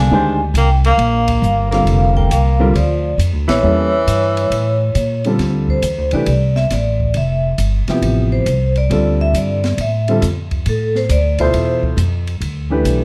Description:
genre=modal jazz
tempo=137 BPM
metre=4/4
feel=swing 67% on 8ths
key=D dorian from 5.4 s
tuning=A4 = 439 Hz
part: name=vibraphone with medium hard mallets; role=melody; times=0.0-11.8 s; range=A4 to Ab5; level=-22 LUFS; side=equal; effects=plate reverb
part: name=clear tenor saxophone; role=second line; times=0.0-5.2 s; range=E3 to D4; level=-23 LUFS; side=equal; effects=none
part: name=warm grand piano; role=accompaniment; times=0.0-13.0 s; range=B2 to C5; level=-21 LUFS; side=equal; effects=none
part: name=upright bass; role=bass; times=0.0-13.0 s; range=F1 to Bb2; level=-19 LUFS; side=equal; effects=none
part: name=open jazz drum kit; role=drums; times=0.5-13.0 s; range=hi-hat, kick drum, ride cymbal, snare drum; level=-29 LUFS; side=equal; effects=none
room=light reverb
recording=dark, warm production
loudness=-16 LUFS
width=mono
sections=0.0-5.4 A section; 5.4-13.0 B section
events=band accent 3.4; vibraphone solo 5.4-13.0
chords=0.0 Bb; 3.6 A7b9; 5.4 Dm11; 12.4 Gadd9

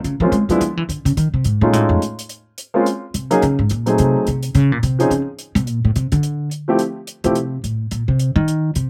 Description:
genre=jazz piano trio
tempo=214 BPM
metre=4/4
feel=swing 60% on 8ths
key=unclear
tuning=A4 = 440 Hz
part: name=upright bass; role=bass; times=0.0-8.9 s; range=F2 to Ab3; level=-20 LUFS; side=equal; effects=none
part: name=hi-hat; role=drums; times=0.0-8.8 s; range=none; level=-34 LUFS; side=equal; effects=none
part: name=warm grand piano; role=melody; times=0.2-7.3 s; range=F3 to Ab4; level=-19 LUFS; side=equal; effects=slapback echo
room=little or no reverb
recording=recorded outdoors, with no room sound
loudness=-18 LUFS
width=mono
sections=0.0-4.5 A section; 4.5-8.9 A section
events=upright bass solo 0.0-8.9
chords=0.0 Bbm7 (rootless); 0.6 Dbm; 1.2 Abadd9; 1.7 F7alt; 2.3 N.C.; 3.4 Ebm7 (rootless); 4.0 Ab7b9; 4.5 Dbmaj7(no3); 5.7 Amadd11; 6.2 N.C.; 6.8 F (rootless); 7.9 Cm7

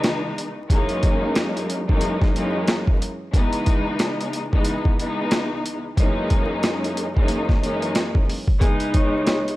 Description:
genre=hip hop, boom-bap hip-hop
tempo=91 BPM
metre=4/4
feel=swing 60% on 16ths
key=C# dorian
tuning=A4 = 435 Hz
part: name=warm studio string section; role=accompaniment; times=0.0-9.6 s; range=C#2 to D#4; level=-23 LUFS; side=left 1 dB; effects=cassette tape, high-pass filter, low-pass filter
part: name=boom bap sampler-style drum kit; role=drums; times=0.0-9.6 s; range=hi-hat, kick drum, rim click, snare drum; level=-20 LUFS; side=equal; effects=none
part: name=vibraphone with medium mallets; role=melody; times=8.6-9.4 s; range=G#4 to C#6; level=-27 LUFS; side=left 1 dB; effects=high-pass filter, low-pass filter, analog delay
room=studio ambience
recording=dry, gritty hardware recording, transformer saturation, vinyl crackle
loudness=-19 LUFS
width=side -17 dB against mid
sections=0.0-8.6 A section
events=none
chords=0.0 C#m7; 0.7 F#13; 3.3 C#m7; 6.0 F#13; 8.6 C#m7

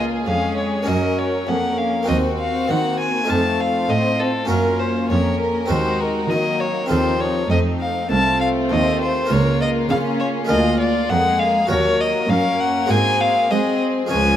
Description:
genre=classical, baroque-style concerto movement with solo episodes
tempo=100 BPM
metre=4/4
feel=straight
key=Bb minor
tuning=A4 = 440 Hz
part: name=rich chamber violin section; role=melody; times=0.0-14.4 s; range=Eb4 to Bb4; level=-29 LUFS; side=left 1 dB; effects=none
part: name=warm violin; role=melody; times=0.0-14.4 s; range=A4 to A5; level=-21 LUFS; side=left 2 dB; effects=none
part: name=warm symphonic violin section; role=second line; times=0.0-14.4 s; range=A3 to F4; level=-27 LUFS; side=left 2 dB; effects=none
part: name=harpsichord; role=accompaniment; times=0.0-14.4 s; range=C2 to Db5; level=-25 LUFS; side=right 1 dB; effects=none
part: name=warm chamber viola section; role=accompaniment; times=0.0-14.4 s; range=F3 to Db4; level=-24 LUFS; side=left 1 dB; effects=none
part: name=warm symphonic cello section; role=bass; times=0.0-14.4 s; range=C2 to Ab3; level=-23 LUFS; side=right 2 dB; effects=none
room=moderate recital hall reverb, RT60 1.3 s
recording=none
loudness=-17 LUFS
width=side -10 dB against mid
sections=0.0-14.4 A section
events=none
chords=0.0 Db; 0.9 Gb; 2.1 Cm7b5/Eb; 3.3 F7; 4.5 Gb; 5.7 Cm7b5/Eb; 6.9 F7/Eb; 9.3 Bbm/Db; 10.5 Bb7/D; 11.7 Ebm; 12.9 Ab7

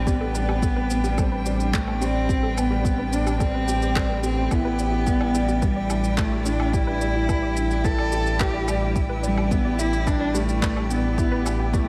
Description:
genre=piano and strings electronica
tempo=108 BPM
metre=4/4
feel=straight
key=A minor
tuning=A4 = 441 Hz
part: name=warm cello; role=melody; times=0.0-11.9 s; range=G3 to A4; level=-28 LUFS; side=equal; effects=tape echo
part: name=clear string quartet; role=sustained chords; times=0.0-11.9 s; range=D4 to G5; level=-34 LUFS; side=equal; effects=sidechain pumping
part: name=warm concert grand piano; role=riff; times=0.0-11.9 s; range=G3 to G4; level=-32 LUFS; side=equal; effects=ensemble chorus, tape echo
part: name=round analog bass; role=bass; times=0.0-11.9 s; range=A1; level=-28 LUFS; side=equal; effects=sidechain pumping
part: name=unison pluck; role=arpeggios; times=0.1-11.8 s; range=G4 to D6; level=-38 LUFS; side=equal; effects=sidechain pumping, tape echo
part: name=electronic kick drum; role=drums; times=0.1-11.8 s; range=none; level=-27 LUFS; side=equal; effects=none
part: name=electronic shaker, woodblock and handclaps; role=drums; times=0.1-11.8 s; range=none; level=-35 LUFS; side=equal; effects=none
room=moderate plate reverb, RT60 1.9 s, small room ambience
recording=dreamy mix soaked in reverb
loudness=-23 LUFS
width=mono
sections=0.0-11.9 A section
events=none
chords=0.0 Am11; 4.5 Em7/A

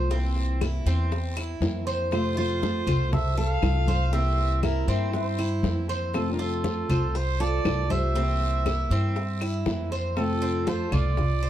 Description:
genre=latin, Cuban son and guajira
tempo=119 BPM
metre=4/4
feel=straight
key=F major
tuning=A4 = 440 Hz
part: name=picked steel-string acoustic guitar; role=accompaniment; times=0.0-11.2 s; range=C3 to F4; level=-33 LUFS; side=left 3 dB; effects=none
part: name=Cuban tres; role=arpeggios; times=0.0-11.5 s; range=C4 to C5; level=-33 LUFS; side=right 2 dB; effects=none
part: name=upright bass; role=bass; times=0.0-11.5 s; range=C2 to G2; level=-26 LUFS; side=equal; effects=none
part: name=bongos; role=percussion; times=0.1-11.4 s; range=none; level=-34 LUFS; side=left 4 dB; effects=none
part: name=congas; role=percussion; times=0.1-11.5 s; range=none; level=-30 LUFS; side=left 1 dB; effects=none
part: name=guiro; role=percussion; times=0.1-11.5 s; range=none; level=-45 LUFS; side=left 5 dB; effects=none
part: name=claves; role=percussion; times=0.6-11.2 s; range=none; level=-40 LUFS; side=left 5 dB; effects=none
part: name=warm trumpet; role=melody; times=2.1-11.5 s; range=A4 to F5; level=-31 LUFS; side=right 3 dB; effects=none
part: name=nylon-string guitar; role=second line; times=2.1-11.5 s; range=C4 to A4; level=-34 LUFS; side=equal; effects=none
room=light reverb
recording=dark, warm production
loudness=-23 LUFS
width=side -12 dB against mid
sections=0.0-10.2 A section; 10.2-11.5 B section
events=none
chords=0.1 C7; 2.1 F; 4.1 C7; 6.1 F; 8.2 C7; 10.2 F

